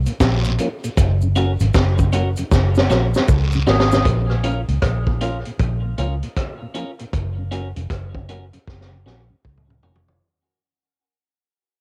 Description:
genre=dub reggae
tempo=78 BPM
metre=4/4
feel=swing 63% on 16ths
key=unclear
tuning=A4 = 439 Hz
part: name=vintage muted fingered electric bass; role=bass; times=0.0-10.2 s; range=F1 to Db2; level=-22 LUFS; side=equal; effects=tube saturation
part: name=mellow tonewheel organ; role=accompaniment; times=0.1-10.1 s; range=Gb2 to Db4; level=-30 LUFS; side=equal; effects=chorus vibrato, slow rotary speaker, cassette tape
part: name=vintage drum kit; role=drums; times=0.1-10.3 s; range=hi-hat, kick drum, rim click, snare drum, toms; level=-22 LUFS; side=equal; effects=cassette tape
part: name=cabasa and guiro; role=percussion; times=0.1-4.0 s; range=none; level=-37 LUFS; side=equal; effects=dub echo
part: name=clean electric guitar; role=accompaniment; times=1.4-10.0 s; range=Db4 to Bb4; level=-31 LUFS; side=equal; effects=cassette tape, dub echo
part: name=melodica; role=melody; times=3.7-4.1 s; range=Ab4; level=-30 LUFS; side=equal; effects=dub echo
room=little or no reverb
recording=home recording on cassette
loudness=-19 LUFS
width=mono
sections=0.0-4.1 A section; 4.1-10.2 B section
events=break 0.0-1.0, 4.1-10.2; drum fill 2.5-4.1, 8.7-10.2; fade-out 4.1-10.2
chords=0.0 Bbm; 1.0 Gb; 4.1 Bbm; 7.1 Gb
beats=0.21 | 0.97 1.75 2.52 3.29 | 4.05 4.82 5.59 6.37 | 7.13 7.91 8.68 9.45

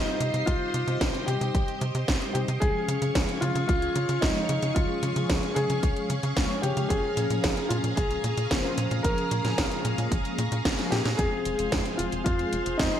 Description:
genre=italo disco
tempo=112 BPM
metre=4/4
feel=straight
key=unclear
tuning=A4 = 442 Hz
part: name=dark baby grand piano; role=melody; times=0.0-13.0 s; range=Eb4 to Bb4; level=-30 LUFS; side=left 1 dB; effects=ping-pong delay
part: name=string machine, full ensemble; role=sustained chords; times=0.0-13.0 s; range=Db4 to Db6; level=-33 LUFS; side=right 1 dB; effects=ensemble chorus
part: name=mellow synth brass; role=stabs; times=0.0-13.0 s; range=F3 to F5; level=-33 LUFS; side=left 1 dB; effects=chorus
part: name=tight sequencer bass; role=bass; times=0.0-12.9 s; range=F1 to Db3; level=-30 LUFS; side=equal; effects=none
part: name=house drum kit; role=drums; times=0.2-12.9 s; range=hi-hat, snare drum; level=-31 LUFS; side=equal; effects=gated reverb
part: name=electronic kick drum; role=drums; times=0.5-12.9 s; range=none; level=-28 LUFS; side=equal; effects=none
room=moderate plate reverb, RT60 1.6 s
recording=bright 1980s-style digital production, vinyl crackle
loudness=-24 LUFS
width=side -10 dB against mid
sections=0.0-13.0 A section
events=filter sweep on analog polysynth 0.0-13.0; drum fill 10.8-11.2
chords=0.0 Cm; 2.6 Db; 6.9 Bbm7; 11.2 Fm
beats=| 0.47 1.01 1.54 2.08 | 2.62 3.15 3.69 4.22 | 4.76 5.29 5.83 6.37 | 6.90 7.44 7.97 8.51 | 9.04 9.58 10.12 10.65 | 11.19 11.72 12.26 12.79

